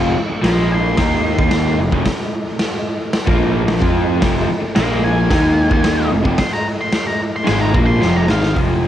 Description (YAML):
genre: garage rock duo or trio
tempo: 111 BPM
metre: 4/4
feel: straight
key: F minor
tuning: A4 = 440 Hz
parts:
  - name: octave-fuzz lead guitar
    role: melody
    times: 0.0-8.6 s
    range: F4 to C6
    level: -23 LUFS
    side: equal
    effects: distortion, cassette tape
  - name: raw garage guitar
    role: riff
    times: 0.0-8.9 s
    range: F2 to F4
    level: -18 LUFS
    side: left 1 dB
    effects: overdrive, cassette tape
  - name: fuzz picked electric bass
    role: bass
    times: 0.0-8.9 s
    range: F1 to F2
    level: -19 LUFS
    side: right 1 dB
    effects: overdrive
  - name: raw garage drum kit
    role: drums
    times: 0.4-8.7 s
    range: hi-hat, kick drum, snare drum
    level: -18 LUFS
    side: equal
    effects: none
room: light reverb, studio ambience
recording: home recording on cassette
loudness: -14 LUFS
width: side -11 dB against mid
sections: 0.0-8.6 A section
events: lead electric guitar solo 0.0-8.6; drum fill 8.0-8.6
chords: 0.4 Bb5; 1.0 F5; 3.3 Bb5; 3.8 F5; 4.8 Bb5; 5.3 Fm